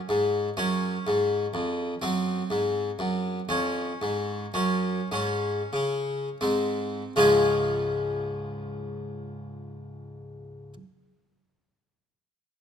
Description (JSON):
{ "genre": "classical, baroque-style suite movement for harpsichord", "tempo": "77-125 BPM", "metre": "3/4", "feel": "rubato", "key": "Db major", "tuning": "A4 = 439 Hz", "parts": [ { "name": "harpsichord", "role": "solo", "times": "0.0-10.7 s", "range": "Db2 to F4", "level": "-25 LUFS", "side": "left 1 dB", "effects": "none" } ], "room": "light reverb", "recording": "close, detailed microphones", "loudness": "-24 LUFS", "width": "side -8 dB against mid", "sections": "0.0-7.2 A section; 7.2-11.6 B section", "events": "slowing down 2.8-7.2", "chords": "0.0 Dbadd11; 2.0 Ab7/Gb; 3.5 Db/F; 4.6 Gb5; 5.1 Db5/Ab; 6.4 Ab; 7.2 Db", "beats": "0.09 | 0.57 1.06 1.54 | 2.03 2.51 2.99 | 3.49 4.01 4.55 | 5.12 5.72 6.41 | 7.17 7.91 8.65 | 9.39 10.14" }